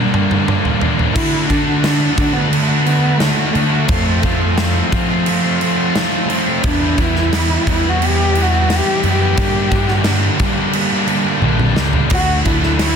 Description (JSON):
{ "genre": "quiet-loud alternative rock", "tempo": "88 BPM", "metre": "4/4", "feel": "straight", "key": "unclear", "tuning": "A4 = 440 Hz", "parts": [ { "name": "dark cello", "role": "melody", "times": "0.0-13.0 s", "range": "A3 to G4", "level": "-20 LUFS", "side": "left 1 dB", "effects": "slapback echo" }, { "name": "crunchy overdriven guitar", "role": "riff", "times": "0.0-13.0 s", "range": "G2 to F#4", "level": "-23 LUFS", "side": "equal", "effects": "none" }, { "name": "scooped high-gain guitar", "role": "riff", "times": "0.0-13.0 s", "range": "G2 to G4", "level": "-22 LUFS", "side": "left 15 dB", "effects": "distortion" }, { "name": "thick fuzz guitar", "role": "riff", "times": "0.0-13.0 s", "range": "G2 to F#4", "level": "-22 LUFS", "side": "right 11 dB", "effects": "distortion" }, { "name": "overdriven picked electric bass", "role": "bass", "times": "0.0-13.0 s", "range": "Bb1 to G3", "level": "-18 LUFS", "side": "equal", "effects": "none" }, { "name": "big rock drum kit", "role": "drums", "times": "0.1-13.0 s", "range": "crash cymbal, kick drum, snare drum, toms", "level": "-19 LUFS", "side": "right 1 dB", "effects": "none" } ], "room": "light reverb", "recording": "dense, heavily limited modern master", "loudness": "-13 LUFS", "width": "side -7 dB against mid", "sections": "0.0-1.2 A section; 1.2-13.0 A section", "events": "drum fill 0.0-1.2, 11.4-12.1", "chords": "0.0 Gm; 1.2 D; 3.9 F; 6.6 Em; 9.4 Gm; 12.1 D", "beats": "0.48 | 1.16 1.85 2.53 3.22 | 3.90 4.59 5.27 5.96 | 6.64 7.32 8.01 8.69 | 9.38 10.06 10.75 11.43 | 12.12 12.80" }